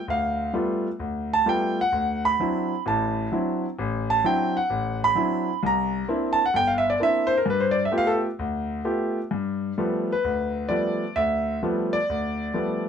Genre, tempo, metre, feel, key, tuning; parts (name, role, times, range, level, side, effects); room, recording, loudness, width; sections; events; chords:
solo jazz; 130 BPM; 4/4; swing 68% on 8ths; G mixolydian; A4 = 440 Hz
warm concert grand piano; solo; 0.0-12.9 s; G1 to B5; -22 LUFS; equal
light reverb; -22 LUFS; side -7 dB against mid
0.0-9.3 A section; 9.3-12.9 B section
grand piano solo 0.0-9.3
0.0 G9; 1.9 D9; 5.6 C9; 7.5 G9